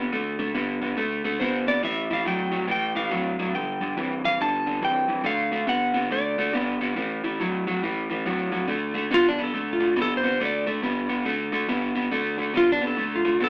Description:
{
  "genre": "blues",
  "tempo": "140 BPM",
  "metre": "4/4",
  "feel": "swing 63% on 8ths",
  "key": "unclear",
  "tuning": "A4 = 437 Hz",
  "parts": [
    { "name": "electric guitar through a small old amp", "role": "riff", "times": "0.0-13.5 s", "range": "G2 to B3", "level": "-27 LUFS", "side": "equal", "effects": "none" },
    { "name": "clean lap steel guitar", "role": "melody", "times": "1.4-13.5 s", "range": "D4 to A5", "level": "-27 LUFS", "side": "equal", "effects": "none" }
  ],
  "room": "wet studio ambience, RT60 0.4 s",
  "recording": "none",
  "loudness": "-25 LUFS",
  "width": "mono",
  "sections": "0.0-8.7 A section; 8.7-13.5 B section",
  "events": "electric slide guitar solo 8.7-13.5",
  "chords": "0.0 D5; 1.8 A5; 3.5 G5; 5.3 D; 7.0 A5; 8.7 D5"
}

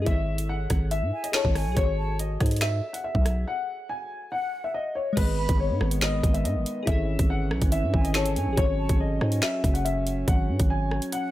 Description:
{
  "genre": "hip hop, drill",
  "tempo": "141 BPM",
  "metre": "4/4",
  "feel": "half-time",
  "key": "unclear",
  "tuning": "A4 = 438 Hz",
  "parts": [
    { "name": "dark concert grand piano", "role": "melody", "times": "0.0-11.3 s", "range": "B4 to G#5", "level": "-30 LUFS", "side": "left 3 dB", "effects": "lush chorus, low-pass filter" },
    { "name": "glassy digital keys", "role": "accompaniment", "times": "0.0-11.3 s", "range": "G#3 to D#5", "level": "-36 LUFS", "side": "left 3 dB", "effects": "chorus, low-pass filter" },
    { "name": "growling 808-style bass", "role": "bass", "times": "0.0-11.0 s", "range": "F#1 to G#2", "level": "-26 LUFS", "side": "equal", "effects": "none" },
    { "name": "drill drum kit", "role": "drums", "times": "0.1-11.2 s", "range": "crash cymbal, finger snaps, hi-hat, kick drum, rim click, snare drum", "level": "-25 LUFS", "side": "equal", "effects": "none" },
    { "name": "concert flute", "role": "second line", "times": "1.1-11.3 s", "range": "F#5 to B5", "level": "-36 LUFS", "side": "right 2 dB", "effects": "analog delay" },
    { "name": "dark French horn section", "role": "sustained chords", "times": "5.2-11.3 s", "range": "D#3 to C#4", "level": "-32 LUFS", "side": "right 1 dB", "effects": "none" }
  ],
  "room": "light reverb",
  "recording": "none",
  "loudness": "-23 LUFS",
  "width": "side -14 dB against mid",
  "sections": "0.0-5.2 A section; 5.2-11.3 B section",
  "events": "break 3.5-5.2",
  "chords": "0.1 A/G#; 1.8 F#m/G#; 5.2 G#m; 6.9 A/G#; 8.6 F#m"
}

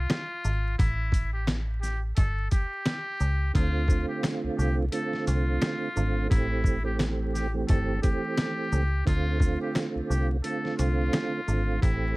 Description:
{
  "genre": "hip hop, boom-bap hip-hop",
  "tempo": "87 BPM",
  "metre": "4/4",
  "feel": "swing 58% on 16ths",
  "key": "D minor",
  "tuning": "A4 = 440 Hz",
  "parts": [
    { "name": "trumpet with metal mute", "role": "melody", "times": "0.0-12.2 s", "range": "E4 to A4", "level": "-34 LUFS", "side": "left 1 dB", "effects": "high-pass filter, low-pass filter, digital delay" },
    { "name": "metallic FM bass", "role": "bass", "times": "0.0-12.2 s", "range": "G1 to D2", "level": "-27 LUFS", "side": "equal", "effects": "none" },
    { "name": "boom bap sampler-style drum kit", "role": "drums", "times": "0.1-12.0 s", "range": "hi-hat, kick drum, shaker, snare drum", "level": "-26 LUFS", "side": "equal", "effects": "none" },
    { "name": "finger snaps", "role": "percussion", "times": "0.1-11.3 s", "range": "none", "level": "-49 LUFS", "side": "left 3 dB", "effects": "none" },
    { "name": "tonewheel organ", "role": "accompaniment", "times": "3.5-12.2 s", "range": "D3 to G4", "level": "-30 LUFS", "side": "right 3 dB", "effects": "chorus vibrato, slow rotary speaker, cassette tape, high-pass filter, low-pass filter, plate reverb" }
  ],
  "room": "light reverb",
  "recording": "vinyl crackle",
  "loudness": "-24 LUFS",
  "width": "side -21 dB against mid",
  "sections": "0.0-12.2 A section",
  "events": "break 0.0-3.5",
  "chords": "0.0 N.C.; 0.8 A7(no3); 3.5 Dm7; 6.3 Am7; 9.1 Dm7"
}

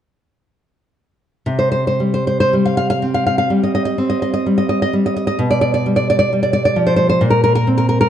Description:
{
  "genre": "romantic piece for solo classical guitar",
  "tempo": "53-67 BPM",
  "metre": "4/4",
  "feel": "rubato",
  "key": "C minor",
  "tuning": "A4 = 440 Hz",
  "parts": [
    { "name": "nylon-string guitar", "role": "solo", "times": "1.5-8.1 s", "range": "Bb2 to F5", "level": "-14 LUFS", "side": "equal", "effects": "none" }
  ],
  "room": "moderate concert hall reverb, RT60 1.7 s",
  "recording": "dark, warm production",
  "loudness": "-14 LUFS",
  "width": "side -10 dB against mid",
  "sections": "1.5-8.1 A section",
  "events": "none",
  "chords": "1.5 C5; 5.4 G7/B; 7.2 Bbsus2"
}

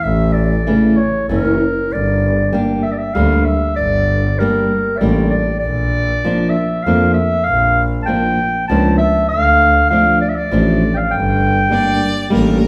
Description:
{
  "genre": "klezmer",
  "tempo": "98 BPM",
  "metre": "3/4",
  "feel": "straight",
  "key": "G dorian sharp4",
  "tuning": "A4 = 439 Hz",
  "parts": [
    { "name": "warm clarinet", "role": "melody", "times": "0.0-12.3 s", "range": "Bb4 to A5", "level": "-19 LUFS", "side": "equal", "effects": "none" },
    { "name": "rich double bass", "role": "bass", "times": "0.0-12.7 s", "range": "F#1 to F2", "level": "-20 LUFS", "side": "equal", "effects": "none" },
    { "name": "flamenco guitar", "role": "accompaniment", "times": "0.7-12.6 s", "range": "C#3 to D4", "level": "-20 LUFS", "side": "equal", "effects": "none" },
    { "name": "clear violin", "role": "second line", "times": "11.7-12.7 s", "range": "Bb4 to D5", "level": "-25 LUFS", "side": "equal", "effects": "none" }
  ],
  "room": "wet recital hall reverb, RT60 1.3 s",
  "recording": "recorded in a church or concert hall",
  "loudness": "-15 LUFS",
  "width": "mono",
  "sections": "0.0-12.7 A section",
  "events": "speeding up 0.0-12.7",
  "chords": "0.0 A; 1.9 Gm; 5.6 Bb; 9.3 Dm; 11.1 Gm"
}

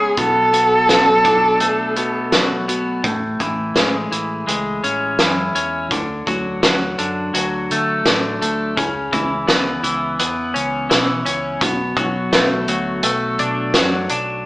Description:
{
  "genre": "post-rock",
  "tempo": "84 BPM",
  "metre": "4/4",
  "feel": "straight",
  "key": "unclear",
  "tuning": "A4 = 441 Hz",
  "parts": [
    { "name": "dark cello", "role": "melody", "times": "0.0-2.3 s", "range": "G#4 to A4", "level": "-14 LUFS", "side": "right 1 dB", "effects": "none" },
    { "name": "twelve-string electric guitar", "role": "arpeggios", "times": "0.0-14.5 s", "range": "A2 to E4", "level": "-20 LUFS", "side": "left 1 dB", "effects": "none" },
    { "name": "fingered electric bass", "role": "bass", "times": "0.0-14.4 s", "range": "A1 to D3", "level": "-30 LUFS", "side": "equal", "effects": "none" },
    { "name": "loose indie drum kit", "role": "drums", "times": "0.2-14.3 s", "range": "hi-hat, kick drum, snare drum", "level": "-18 LUFS", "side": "equal", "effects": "none" }
  ],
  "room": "wet stone room reverb, RT60 1.0 s",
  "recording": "band playing live in one room, small speaker sound",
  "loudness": "-15 LUFS",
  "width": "side -19 dB against mid",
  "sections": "0.0-3.1 A section; 3.1-14.5 B section",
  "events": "none",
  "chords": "0.2 Bm7; 3.1 Amaj7; 5.9 D; 8.8 C#m7; 11.6 Bm7"
}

